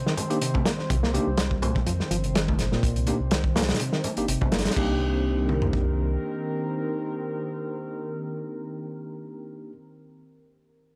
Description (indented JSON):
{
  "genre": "breakbeat, breaks",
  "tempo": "124 BPM",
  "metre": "4/4",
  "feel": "swing 54% on 16ths",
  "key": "C minor",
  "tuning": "A4 = 440 Hz",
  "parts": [
    { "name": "warbly tape-like pad", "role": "sustained chords", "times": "0.0-9.4 s", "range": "Eb3 to C5", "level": "-36 LUFS", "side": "equal", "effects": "chorus, built-in reverb, phaser, sidechain pumping" },
    { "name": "reed electric piano", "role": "riff", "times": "0.1-5.0 s", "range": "Bb2 to Bb3", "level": "-32 LUFS", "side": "equal", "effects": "overdrive, tube saturation, low-pass filter, tape echo" },
    { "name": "crunchy breakbeat drum kit", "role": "drums", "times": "0.1-5.9 s", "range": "crash cymbal, hi-hat, kick drum, snare drum, toms", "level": "-29 LUFS", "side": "equal", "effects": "none" },
    { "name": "congas", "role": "percussion", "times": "0.2-4.5 s", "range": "none", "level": "-35 LUFS", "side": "equal", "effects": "none" },
    { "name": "tine electric piano", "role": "stabs", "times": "0.3-9.7 s", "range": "Bb3 to G4", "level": "-33 LUFS", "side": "equal", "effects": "medium tremolo, low-pass filter, tape echo" },
    { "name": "dark detuned saw bass", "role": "bass", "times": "0.9-6.2 s", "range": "G1 to F2", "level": "-30 LUFS", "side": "equal", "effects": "tube saturation" }
  ],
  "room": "small room ambience",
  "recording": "dry, gritty hardware recording",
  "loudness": "-26 LUFS",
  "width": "mono",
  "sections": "0.0-4.8 A section; 4.8-8.6 B section",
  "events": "filter sweep on detuned saw bass 0.0-4.8",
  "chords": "0.0 Cm7"
}